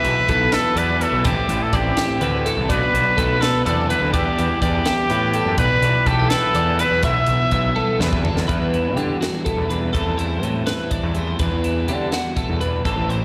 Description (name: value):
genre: math rock and midwest emo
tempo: 83 BPM (dotted quarters)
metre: 6/8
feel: straight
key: E minor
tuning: A4 = 443 Hz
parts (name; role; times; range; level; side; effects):
- clear trumpet; melody; 0.0-8.0 s; G4 to E5; -23 LUFS; equal; slapback echo, tape echo
- twelve-string electric guitar; accompaniment; 0.0-13.2 s; E2 to G4; -30 LUFS; equal; slapback echo
- twelve-string electric guitar; arpeggios; 0.0-13.2 s; F#4 to E5; -28 LUFS; equal; analog chorus, slapback echo
- crunchy overdriven guitar; riff; 0.0-13.2 s; A2 to E4; -30 LUFS; equal; slapback echo
- fuzz picked electric bass; bass; 0.0-13.2 s; A1 to D3; -25 LUFS; equal; overdrive
- crisp fusion drum kit; drums; 0.0-13.2 s; hi-hat, kick drum, snare drum, toms; -28 LUFS; equal; none
room: little or no reverb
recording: live gig heard through the venue's PA, recital hall reverb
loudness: -19 LUFS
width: mono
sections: 0.0-8.5 A section; 8.5-13.2 B section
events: drum fill 7.8-8.5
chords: 0.0 Bsus4; 1.3 Am7; 2.7 Bm7; 4.1 Em7; 5.6 Bsus4; 8.5 Em9; 9.9 C6/E; 11.4 Em9